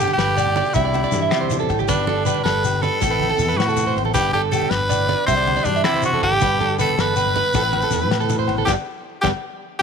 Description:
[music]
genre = highlife guitar band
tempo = 106 BPM (dotted quarters)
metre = 12/8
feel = straight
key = G major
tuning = A4 = 440 Hz
[part]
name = raspy tenor saxophone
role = melody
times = 0.0-9.8 s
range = D4 to C5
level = -21 LUFS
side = left 1 dB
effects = none
[part]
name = fingerpicked steel-string acoustic guitar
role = accompaniment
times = 0.0-9.3 s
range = E2 to G4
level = -28 LUFS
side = left 14 dB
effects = none
[part]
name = electric guitar at the edge of break-up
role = arpeggios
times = 0.0-9.3 s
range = G4 to E5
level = -23 LUFS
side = right 13 dB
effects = vibrato effect, slapback echo
[part]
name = fingered electric bass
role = bass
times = 0.0-9.3 s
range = G1 to C3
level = -25 LUFS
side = left 1 dB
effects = none
[part]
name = agogo bells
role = percussion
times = 0.0-9.3 s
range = none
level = -30 LUFS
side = left 15 dB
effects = none
[part]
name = shekere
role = percussion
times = 0.0-9.3 s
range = none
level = -30 LUFS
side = left 9 dB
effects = none
[part]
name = congas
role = percussion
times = 0.1-9.3 s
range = none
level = -30 LUFS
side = right 9 dB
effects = none
[part]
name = damped 70s drum kit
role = drums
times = 0.2-9.3 s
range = kick drum, ride cymbal, snare drum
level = -29 LUFS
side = left 5 dB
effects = none
[sound]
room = light reverb, studio reverb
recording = 1960s-style stereo with parts hard left and right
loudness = -17 LUFS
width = side -6 dB against mid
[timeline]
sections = 0.0-9.8 A section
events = band accent 8.7-9.8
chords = 0.0 G; 0.8 Cadd9; 1.9 G; 3.0 Amadd9; 4.1 G; 5.3 Cadd9; 6.4 G; 7.5 Amadd9; 8.7 G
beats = 0.18 0.75 1.32 | 1.88 2.45 3.02 3.58 | 4.15 4.71 5.28 5.84 | 6.41 6.98 7.54 8.11 | 8.67 9.24 9.81

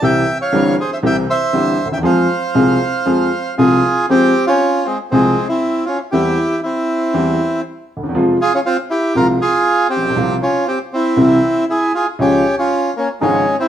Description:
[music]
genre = tango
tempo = 118 BPM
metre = 4/4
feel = rubato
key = F harmonic minor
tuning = A4 = 440 Hz
[part]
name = bandoneon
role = melody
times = 0.0-13.7 s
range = Ab3 to G5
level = -15 LUFS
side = right 1 dB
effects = none
[part]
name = clear upright piano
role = accompaniment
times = 0.0-13.4 s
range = G1 to Ab4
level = -15 LUFS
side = left 1 dB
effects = none
[sound]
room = moderate stone room reverb, RT60 1.0 s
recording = band playing live in one room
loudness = -13 LUFS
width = side -10 dB against mid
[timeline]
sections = 0.0-4.1 A section; 4.1-13.7 A section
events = none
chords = 0.0 C; 2.0 Fm; 6.1 C/E; 8.2 Fm; 10.1 Csus4; 11.2 C; 12.2 Db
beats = | 0.01 0.52 1.02 1.53 | 2.04 2.54 3.06 3.58 | 4.09 4.60 5.11 5.62 | 6.13 6.64 7.14 7.65 | 8.15 8.65 9.15 9.65 | 10.15 10.65 11.16 11.67 | 12.18 12.70 13.20

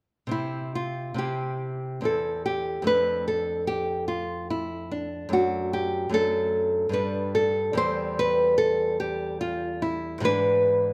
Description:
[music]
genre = classical, baroque-style dance for nylon-string guitar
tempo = 73 BPM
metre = 3/4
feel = rubato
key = C major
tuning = A4 = 440 Hz
[part]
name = nylon-string guitar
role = solo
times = 0.3-10.9 s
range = E2 to C5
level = -26 LUFS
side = equal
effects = none
[sound]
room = moderate recital hall reverb, RT60 1.4 s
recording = none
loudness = -26 LUFS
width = mono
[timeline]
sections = 0.3-10.9 A section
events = none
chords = 0.3 C; 2.0 C/E; 2.9 Dm/F; 5.3 D/F#; 7.0 G; 7.8 C/E; 10.3 E7/G#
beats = | 0.34 1.20 2.05 | 2.88 3.69 4.51 | 5.33 6.15 6.96 | 7.78 8.59 9.40 | 10.25

